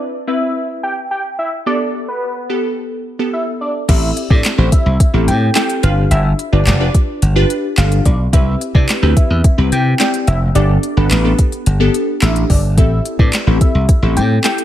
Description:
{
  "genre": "dance-pop",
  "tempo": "108 BPM",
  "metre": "4/4",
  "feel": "straight",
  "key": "unclear",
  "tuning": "A4 = 440 Hz",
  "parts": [
    { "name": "glassy wavetable pluck", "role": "accompaniment", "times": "0.0-14.6 s", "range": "B3 to D5", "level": "-19 LUFS", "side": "left 1 dB", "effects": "chorus, sidechain pumping, low-pass filter" },
    { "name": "fat analog lead", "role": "melody", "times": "0.3-14.5 s", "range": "B4 to G5", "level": "-22 LUFS", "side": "equal", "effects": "sidechain pumping, low-pass filter, analog delay" },
    { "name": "slap bass", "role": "bass", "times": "3.9-14.4 s", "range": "F1 to C3", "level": "-13 LUFS", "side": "equal", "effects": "sidechain pumping" },
    { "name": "smooth R&B drum kit", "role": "drums", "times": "3.9-14.6 s", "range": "crash cymbal, handclaps, hi-hat, kick drum, snare drum", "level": "-14 LUFS", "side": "equal", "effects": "overdrive" }
  ],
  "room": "light reverb, digital ambience",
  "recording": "none",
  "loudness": "-12 LUFS",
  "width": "side -12 dB against mid",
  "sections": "0.0-3.9 A section; 3.9-14.6 B section",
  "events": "drop 3.9-14.6",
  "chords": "0.0 Cmaj7; 1.7 Gadd9; 3.9 Am7; 5.8 G7; 8.3 Cmaj7; 10.6 Gadd9; 12.8 Am7"
}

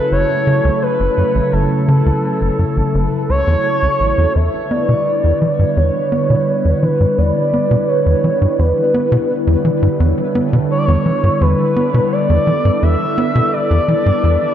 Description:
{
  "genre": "ambient, sequencer-driven space music",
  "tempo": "85 BPM",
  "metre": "4/4",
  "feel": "straight",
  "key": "E dorian from 4.4 s",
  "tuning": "A4 = 440 Hz",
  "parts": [
    { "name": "expressive portamento lead", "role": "melody", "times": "0.0-14.5 s", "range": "A4 to E5", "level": "-18 LUFS", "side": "equal", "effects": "chorus, tape echo" },
    { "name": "phased analog pad", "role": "sustained chords", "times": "0.0-14.5 s", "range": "C#3 to B4", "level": "-19 LUFS", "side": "equal", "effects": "phaser, chorus" },
    { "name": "pulsing gated texture", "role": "texture", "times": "0.0-14.5 s", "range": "A3 to B4", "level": "-26 LUFS", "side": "left 1 dB", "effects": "chorus, built-in reverb" },
    { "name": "tight sequencer bass", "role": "riff", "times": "0.1-14.4 s", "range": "F#1 to B3", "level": "-16 LUFS", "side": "equal", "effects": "tape echo" }
  ],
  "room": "wet spring reverb, RT60 2.3 s",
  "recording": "echo-heavy mix",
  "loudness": "-13 LUFS",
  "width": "side -10 dB against mid",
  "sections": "0.0-4.4 A section; 4.4-14.5 B section",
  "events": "none",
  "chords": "0.0 F#m7; 4.4 Em7"
}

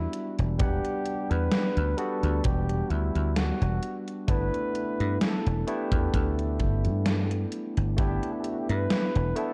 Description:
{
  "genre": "vaporwave",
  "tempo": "65 BPM",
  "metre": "4/4",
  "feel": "swing 55% on 16ths",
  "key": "G major",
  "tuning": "A4 = 440 Hz",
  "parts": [
    { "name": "mellow flugelhorn", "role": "melody", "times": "0.0-9.5 s", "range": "E4 to B4", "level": "-36 LUFS", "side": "equal", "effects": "tape echo" },
    { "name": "barky tine electric piano", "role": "accompaniment", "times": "0.0-9.5 s", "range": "G3 to F#5", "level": "-34 LUFS", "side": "equal", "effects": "lush chorus" },
    { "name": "dry thumbed slap bass", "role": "bass", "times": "0.0-9.3 s", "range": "E1 to G2", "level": "-29 LUFS", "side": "equal", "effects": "none" },
    { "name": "gated 80s digital drum machine", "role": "drums", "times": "0.1-9.5 s", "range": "hi-hat, snare drum", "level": "-33 LUFS", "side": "equal", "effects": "gated reverb, gated reverb snare, overdrive" },
    { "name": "kick drum", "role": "drums", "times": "0.6-8.2 s", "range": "none", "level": "-32 LUFS", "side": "equal", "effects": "none" }
  ],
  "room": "light reverb",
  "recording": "dark, warm production, cassette tape",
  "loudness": "-27 LUFS",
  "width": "mono",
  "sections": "0.0-9.5 A section",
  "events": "none",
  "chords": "0.0 Em9; 4.3 G6"
}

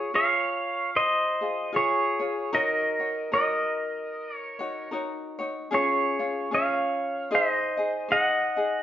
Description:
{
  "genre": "Hawaiian",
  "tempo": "75 BPM",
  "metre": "4/4",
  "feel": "swing 60% on 8ths",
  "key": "Db major",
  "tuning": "A4 = 440 Hz",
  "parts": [
    { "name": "pedal steel guitar", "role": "melody", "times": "0.0-8.8 s", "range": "Ab4 to Gb5", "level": "-24 LUFS", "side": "right 1 dB", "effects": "none" },
    { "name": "ukulele", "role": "accompaniment", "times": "0.0-8.8 s", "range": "Db4 to Eb5", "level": "-31 LUFS", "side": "left 2 dB", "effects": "none" }
  ],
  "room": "moderate large studio reverb, RT60 1.0 s",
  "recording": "band playing live in one room, nothing above 7.6 kHz",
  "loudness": "-24 LUFS",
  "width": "side -11 dB against mid",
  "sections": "0.0-8.8 A section",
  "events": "none",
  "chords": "0.0 Dbmaj7; 2.5 Gb6; 5.7 Db; 7.3 Ab"
}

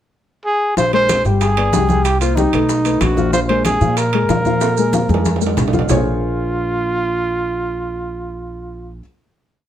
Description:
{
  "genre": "Afro-Cuban jazz",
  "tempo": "188 BPM",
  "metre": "4/4",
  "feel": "straight",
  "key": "Bb minor",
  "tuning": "A4 = 440 Hz",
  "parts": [
    { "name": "dark trumpet", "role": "melody", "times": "0.5-9.0 s", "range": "Eb4 to C5", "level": "-18 LUFS", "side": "right 1 dB", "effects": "none" },
    { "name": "dark baby grand piano", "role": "accompaniment", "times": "0.8-9.0 s", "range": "F3 to G5", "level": "-20 LUFS", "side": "left 4 dB", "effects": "none" },
    { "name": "upright bass", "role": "bass", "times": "0.8-9.0 s", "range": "G1 to Bb2", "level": "-20 LUFS", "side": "right 1 dB", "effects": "none" },
    { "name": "bongos", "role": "percussion", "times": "0.8-6.0 s", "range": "none", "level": "-28 LUFS", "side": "left 6 dB", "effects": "none" },
    { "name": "congas", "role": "percussion", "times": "0.8-6.0 s", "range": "none", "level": "-22 LUFS", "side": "right 1 dB", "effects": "none" },
    { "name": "maracas", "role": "percussion", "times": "0.8-6.0 s", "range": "none", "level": "-30 LUFS", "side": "right 9 dB", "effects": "none" },
    { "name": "timbales", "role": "percussion", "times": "0.9-6.0 s", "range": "none", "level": "-25 LUFS", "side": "right 9 dB", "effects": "none" }
  ],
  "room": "moderate studio reverb, RT60 0.6 s",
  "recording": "none",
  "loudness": "-14 LUFS",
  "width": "side -11 dB against mid",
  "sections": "0.0-0.8 pickup bar; 0.8-5.9 A section; 5.9-8.4 final chord",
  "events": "drum fill 4.6-5.9",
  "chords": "0.0 N.C.; 0.8 Bbsus2; 1.4 G; 2.1 Cm7; 2.7 B7; 3.3 Bb5; 5.9 Bbm9"
}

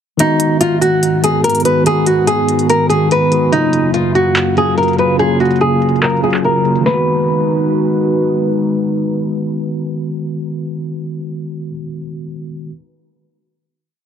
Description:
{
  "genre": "hip hop, trap",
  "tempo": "144 BPM",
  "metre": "4/4",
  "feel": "half-time",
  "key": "G# dorian",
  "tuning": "A4 = 440 Hz",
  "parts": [
    { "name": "nylon-string guitar", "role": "melody", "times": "0.2-8.1 s", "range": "D#4 to B4", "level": "-15 LUFS", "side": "equal", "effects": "ping-pong delay" },
    { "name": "mellow tine electric piano", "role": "accompaniment", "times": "0.2-12.7 s", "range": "C#3 to G#4", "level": "-17 LUFS", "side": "equal", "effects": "medium stereo tremolo" },
    { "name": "dark analog pad", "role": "sustained chords", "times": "0.2-11.0 s", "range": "F#2 to E#5", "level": "-19 LUFS", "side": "equal", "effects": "chorus" },
    { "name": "trap drum kit", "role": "drums", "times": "0.2-7.0 s", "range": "handclaps, hi-hat, snare drum", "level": "-21 LUFS", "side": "equal", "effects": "none" }
  ],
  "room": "light reverb",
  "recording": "heavily compressed radio sound, multiband compression, low-pass filter",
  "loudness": "-12 LUFS",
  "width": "side -8 dB against mid",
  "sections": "0.2-6.9 breakdown; 6.9-10.2 final chord",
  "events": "none",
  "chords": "0.2 G#m7; 3.5 F#maj7; 6.9 G#m7"
}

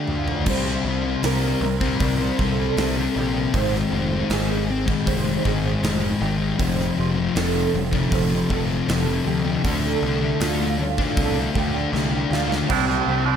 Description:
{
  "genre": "rock, shoegaze and dream pop",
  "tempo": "78 BPM",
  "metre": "4/4",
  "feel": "straight",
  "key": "unclear",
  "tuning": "A4 = 442 Hz",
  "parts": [
    { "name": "fingerpicked twelve-string acoustic guitar", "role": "arpeggios", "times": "0.0-13.4 s", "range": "F4 to C5", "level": "-28 LUFS", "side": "right 10 dB", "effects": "ensemble chorus, tape echo" },
    { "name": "thick fuzz guitar", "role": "riff", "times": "0.0-13.4 s", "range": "F2 to D4", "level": "-22 LUFS", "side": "left 5 dB", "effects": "distortion, analog chorus" },
    { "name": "twangy electric guitar", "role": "riff", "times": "0.0-0.5, 12.7-13.4 s", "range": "C3 to D4", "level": "-26 LUFS", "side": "right 12 dB", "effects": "reverse reverb" },
    { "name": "fuzz picked electric bass", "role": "bass", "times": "0.0-13.4 s", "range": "F1 to D2", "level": "-26 LUFS", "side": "right 1 dB", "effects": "overdrive" },
    { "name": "gated 80s drum kit", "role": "drums", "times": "0.1-13.0 s", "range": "crash cymbal, hi-hat, kick drum, snare drum, toms", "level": "-27 LUFS", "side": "right 1 dB", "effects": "none" }
  ],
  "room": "moderate huge ambient reverb, RT60 7.7 s",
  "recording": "dreamy mix soaked in reverb",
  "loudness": "-19 LUFS",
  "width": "side -8 dB against mid",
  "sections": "0.5-13.4 A section",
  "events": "drum fill 0.0-0.5, 11.9-12.7",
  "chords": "0.5 C5; 3.5 Ab; 6.6 F; 9.6 Dm; 12.7 Csus2"
}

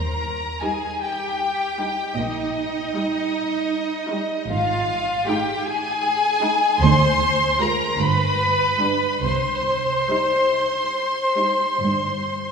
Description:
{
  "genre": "classical, slow romantic movement for string orchestra",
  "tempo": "46-52 BPM (dotted quarters)",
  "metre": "12/8",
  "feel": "rubato",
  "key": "C minor",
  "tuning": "A4 = 445 Hz",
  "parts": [
    { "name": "warm symphonic violin section", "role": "melody", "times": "0.0-12.5 s", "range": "Eb5 to C6", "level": "-22 LUFS", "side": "left 2 dB", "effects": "none" },
    { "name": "rich symphonic violin section", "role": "second line", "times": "0.0-12.5 s", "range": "Eb4 to C5", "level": "-24 LUFS", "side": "equal", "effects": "none" },
    { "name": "warm symphonic cello section", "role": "bass", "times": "0.0-12.5 s", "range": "D2 to C3", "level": "-28 LUFS", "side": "right 3 dB", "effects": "none" },
    { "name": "warm symphonic double bass section", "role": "bass", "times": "0.0-12.5 s", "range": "G1 to Eb2", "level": "-26 LUFS", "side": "right 3 dB", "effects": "none" },
    { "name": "rich symphonic viola section", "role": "accompaniment", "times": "0.6-11.7 s", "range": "G3 to F4", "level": "-31 LUFS", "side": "right 2 dB", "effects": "none" }
  ],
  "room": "wet church reverb, RT60 3.1 s",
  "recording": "recorded in a church or concert hall, studio ambience",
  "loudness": "-19 LUFS",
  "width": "side -6 dB against mid",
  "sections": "0.0-12.5 A section",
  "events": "none",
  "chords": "0.0 Eb; 4.5 Ab5; 6.8 Dm7b5; 8.0 G; 9.3 Cm"
}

